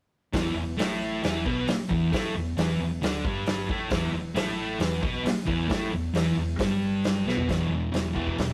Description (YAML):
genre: garage rock duo or trio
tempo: 134 BPM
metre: 4/4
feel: straight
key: unclear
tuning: A4 = 440 Hz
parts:
  - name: thick fuzz guitar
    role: riff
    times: 0.3-8.5 s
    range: E2 to D4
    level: -29 LUFS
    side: equal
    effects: distortion
  - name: hollow-body short-scale fingered electric bass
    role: bass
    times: 0.3-8.5 s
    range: E1 to D2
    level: -37 LUFS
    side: equal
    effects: none
  - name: vintage drum kit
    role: drums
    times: 0.3-8.5 s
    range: hi-hat, kick drum, snare drum, toms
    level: -32 LUFS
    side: equal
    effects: none
room: light reverb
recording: rough rehearsal-room recording, tube saturation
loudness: -27 LUFS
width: mono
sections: 0.3-7.5 A section; 7.5-8.5 B section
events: drum fill 7.3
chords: 0.3 E5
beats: | 0.33 0.78 1.23 1.67 | 2.12 2.57 3.02 3.46 | 3.91 4.36 4.80 5.25 | 5.70 6.14 6.59 7.04 | 7.49 7.93 8.38